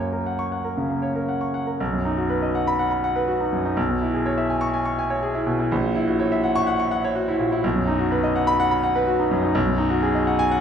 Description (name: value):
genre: classical, virtuoso piano study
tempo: 124 BPM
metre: 4/4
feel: rubato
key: B major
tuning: A4 = 437 Hz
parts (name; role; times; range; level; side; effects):
- clear concert grand piano; solo; 0.0-10.6 s; A#1 to C#6; -20 LUFS; equal; none
room: wet large studio reverb, RT60 1.2 s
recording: heard from further back in the room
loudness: -20 LUFS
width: side -8 dB against mid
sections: 0.0-1.8 A section; 1.8-10.6 B section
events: none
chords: 0.0 F#; 1.8 B; 3.8 C#m7/B; 5.7 F#7/A#; 7.6 B; 9.5 G#m7/B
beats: 0.26 0.78 1.29 | 1.80 2.30 2.79 3.27 | 3.77 4.25 4.73 5.22 | 5.71 6.19 6.67 7.15 | 7.63 8.12 8.60 9.07 | 9.55 10.02 10.50